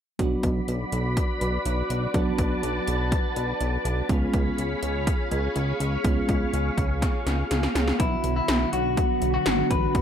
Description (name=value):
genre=synth-pop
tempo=123 BPM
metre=4/4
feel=straight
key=B dorian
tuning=A4 = 440 Hz
part: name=FM electric piano with auto-pan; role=accompaniment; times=0.2-8.0 s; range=F#3 to F#4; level=-30 LUFS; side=right 2 dB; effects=phaser
part: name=ensemble organ-string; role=sustained chords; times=0.2-10.0 s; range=D3 to B5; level=-29 LUFS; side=equal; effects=ensemble chorus
part: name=chorused synth bass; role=bass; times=0.2-10.0 s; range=G#1 to C#2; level=-27 LUFS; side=equal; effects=none
part: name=80s electronic pad drums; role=drums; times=0.2-10.0 s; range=hi-hat, kick drum, snare drum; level=-26 LUFS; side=equal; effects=overdrive
part: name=electric guitar at the edge of break-up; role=melody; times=8.0-10.0 s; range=E4 to B4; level=-26 LUFS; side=left 3 dB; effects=none
room=light reverb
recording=none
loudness=-22 LUFS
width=side -8 dB against mid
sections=0.2-8.0 A section; 8.0-10.0 B section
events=drum fill 7.0-8.0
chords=0.2 Bm; 4.1 C#7; 8.0 Bm